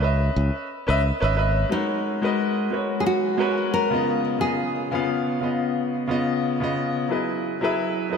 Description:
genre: sunset chillout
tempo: 89 BPM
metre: 4/4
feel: swing 55% on 16ths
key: G# minor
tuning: A4 = 440 Hz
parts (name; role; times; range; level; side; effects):
- nylon-string guitar; melody; 0.0-6.7 s; D#4 to A#4; -26 LUFS; equal; ping-pong delay
- clear baby grand piano; accompaniment; 0.0-8.2 s; C#3 to E#5; -23 LUFS; left 1 dB; auto-pan, ping-pong delay
- modern bright fingered electric bass; bass; 0.0-1.6 s; G#1 to C#2; -21 LUFS; equal; none
room: wet plate reverb, RT60 3.2 s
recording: dreamy mix soaked in reverb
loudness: -21 LUFS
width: side -6 dB against mid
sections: 0.0-1.7 A section; 1.7-8.2 B section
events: none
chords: 0.0 C#m9; 1.7 G#m11; 4.1 C#9; 7.1 F#13sus4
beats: 0.36 1.04 | 1.71 2.38 3.06 3.73 | 4.41 5.08 5.76 6.43 | 7.11 7.78

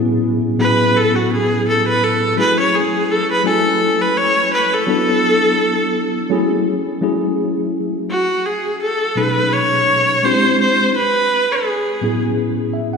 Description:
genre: R&B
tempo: 84 BPM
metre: 4/4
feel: swing 55% on 16ths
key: F# minor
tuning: A4 = 440 Hz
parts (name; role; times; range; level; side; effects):
- mellow tine electric piano; accompaniment; 0.0-13.0 s; A2 to G#5; -18 LUFS; left 1 dB; medium stereo tremolo
- bright viola; melody; 0.6-12.2 s; F#4 to C#5; -16 LUFS; equal; none
room: wet lush hall reverb, RT60 2.7 s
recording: dreamy mix soaked in reverb, studio reverb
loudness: -14 LUFS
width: side -5 dB against mid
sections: 0.0-8.1 A section; 8.1-13.0 B section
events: viola solo 0.0-8.1; tine electric piano fill 12.4-13.0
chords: 0.0 Amaj13; 2.4 F#m7; 4.9 D69; 6.7 F#m9; 8.1 B13; 10.2 E7alt; 10.9 Amaj13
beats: 0.23 0.94 1.65 | 2.37 3.08 3.80 4.51 | 5.22 5.94 6.65 7.37 | 8.08 8.80 9.51 10.22 | 10.94 11.65 12.37

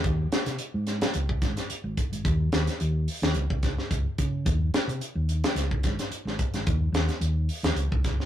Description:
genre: afrobeat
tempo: 109 BPM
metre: 4/4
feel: swing 54% on 16ths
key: unclear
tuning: A4 = 441 Hz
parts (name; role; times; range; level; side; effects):
- hollow-body short-scale fingered electric bass; bass; 0.0-8.2 s; Ab1 to Db3; -27 LUFS; equal; none
- tight funk drum kit; drums; 0.0-8.3 s; hi-hat, kick drum, snare drum; -27 LUFS; equal; none
room: light reverb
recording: rough rehearsal-room recording, tube saturation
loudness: -24 LUFS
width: side -11 dB against mid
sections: 0.0-8.3 A section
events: none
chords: none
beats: | 0.04 0.59 1.14 1.70 | 2.25 2.80 3.35 3.91 | 4.46 5.01 5.57 6.12 | 6.67 7.22 7.77

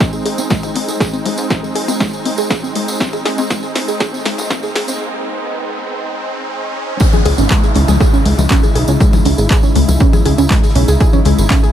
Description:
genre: melodic techno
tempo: 120 BPM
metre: 4/4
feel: straight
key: C# minor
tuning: A4 = 444 Hz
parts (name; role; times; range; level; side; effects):
- warm analog pad; sustained chords; 0.0-11.7 s; C#3 to E4; -22 LUFS; equal; chorus, sidechain pumping
- warbly dusty pluck; arpeggios; 0.0-11.7 s; G#3 to G#4; -19 LUFS; right 1 dB; chorus, sidechain pumping, ping-pong delay
- electronic kick drum; drums; 0.0-11.6 s; none; -14 LUFS; equal; none
- techno drum kit; drums; 0.0-11.6 s; congas, handclaps, hi-hat, snare drum; -22 LUFS; left 3 dB; overdrive, high-pass filter on hats, high-pass filter on perc, high-pass filter on snare
- tambourine; percussion; 0.0-11.7 s; none; -28 LUFS; right 2 dB; none
- riser and downlifter; sound effects; 0.9-11.0 s; none; -26 LUFS; equal; none
- plucky analog bass; bass; 0.3-11.5 s; F#1 to G#2; -15 LUFS; equal; sidechain pumping, high-pass filter
- warm soul drum kit; drums; 7.0-11.7 s; hi-hat, snare drum; -34 LUFS; left 3 dB; none
room: small room ambience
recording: high-pass filter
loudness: -12 LUFS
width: side -10 dB against mid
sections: 0.0-7.0 A section; 7.0-11.7 B section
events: build-up 0.0-7.0; drum fill 0.0-5.0; filter sweep on synth arpeggio sound 0.0-7.0; riser 0.9-7.0; break 5.0-7.0; drop 7.0-11.7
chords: 0.0 G#; 7.0 C#m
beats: 0.01 0.51 | 1.00 1.50 2.00 2.50 | 3.00 3.50 4.00 4.50 | 5.00 5.50 6.00 6.50 | 7.00 7.50 8.01 8.51 | 9.01 9.51 10.01 10.51 | 11.01 11.51

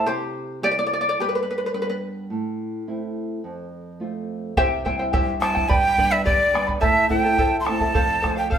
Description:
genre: andean folk, Andean ensemble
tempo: 106 BPM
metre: 2/4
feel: straight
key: unclear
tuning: A4 = 441 Hz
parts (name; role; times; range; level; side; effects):
- charango; accompaniment; 0.0-2.0, 4.6-8.6 s; E4 to B5; -23 LUFS; equal; none
- nylon-string guitar; accompaniment; 0.0-8.6 s; E2 to F4; -29 LUFS; right 1 dB; none
- bombo; percussion; 4.6-8.6 s; none; -24 LUFS; right 1 dB; none
- breathy bright quena; melody; 5.4-8.6 s; D5 to C6; -20 LUFS; right 2 dB; none
room: wet stone room reverb, RT60 1.1 s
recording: band playing live in one room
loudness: -19 LUFS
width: side -8 dB against mid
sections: 0.1-4.6 A section; 4.6-8.6 B section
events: charango solo 0.1-4.6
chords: 0.1 C; 1.2 G; 2.3 Am; 3.4 F; 4.6 C; 5.7 G; 6.8 Am; 8.0 F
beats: | 0.07 0.63 | 1.19 1.75 | 2.32 2.88 | 3.44 4.01 | 4.57 5.13 | 5.70 6.26 | 6.83 7.39 | 7.95 8.52

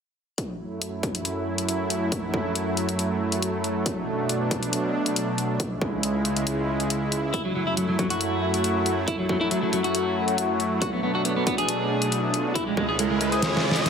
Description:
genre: heavy wobble dubstep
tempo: 138 BPM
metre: 4/4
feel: half-time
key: F# minor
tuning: A4 = 440 Hz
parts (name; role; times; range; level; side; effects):
- supersaw pad; sustained chords; 0.4-13.9 s; C#2 to E4; -25 LUFS; right 1 dB; sidechain pumping, low-pass filter
- dubstep drum kit; drums; 0.4-13.9 s; hi-hat, snare drum; -28 LUFS; left 2 dB; none
- electronic kick drum; drums; 0.4-12.9 s; none; -30 LUFS; equal; high-pass filter on kick, high-pass filter on room
- electric guitar at the edge of break-up; melody; 7.3-13.9 s; F#3 to G#4; -26 LUFS; left 2 dB; phaser, ping-pong delay
- riser; sound effects; 11.8-13.9 s; none; -31 LUFS; right 2 dB; none
room: moderate plate reverb, RT60 1.6 s, digital ambience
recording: dense, heavily limited modern master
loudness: -23 LUFS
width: side -6 dB against mid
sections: 0.4-13.9 A section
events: filter sweep on supersaw synth 0.4-13.9; riser 11.8-13.9; drum fill 13.4-13.9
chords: 0.4 F#m7; 3.9 Bm7; 5.6 C#m; 7.3 F#m7; 10.8 Bm7; 12.6 C#m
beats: | 0.38 0.82 1.25 1.69 | 2.12 2.56 2.99 3.42 | 3.86 4.29 4.73 5.16 | 5.60 6.03 6.47 6.90 | 7.34 7.77 8.21 8.64 | 9.08 9.51 9.95 10.38 | 10.82 11.25 11.69 12.12 | 12.55 12.99 13.43 13.86

